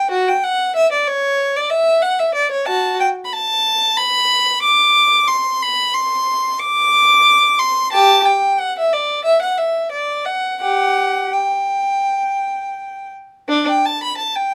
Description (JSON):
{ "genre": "classical, baroque-style suite movement for unaccompanied violin", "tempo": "81-94 BPM", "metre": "4/4", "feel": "rubato", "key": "G major", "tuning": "A4 = 440 Hz", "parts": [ { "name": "rich violin", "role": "solo", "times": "0.0-14.5 s", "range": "D4 to D6", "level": "-16 LUFS", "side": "equal", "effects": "none" } ], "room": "light reverb", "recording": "none", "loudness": "-16 LUFS", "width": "mono", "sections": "0.0-13.5 A section; 13.5-14.5 A section", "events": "none", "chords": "none" }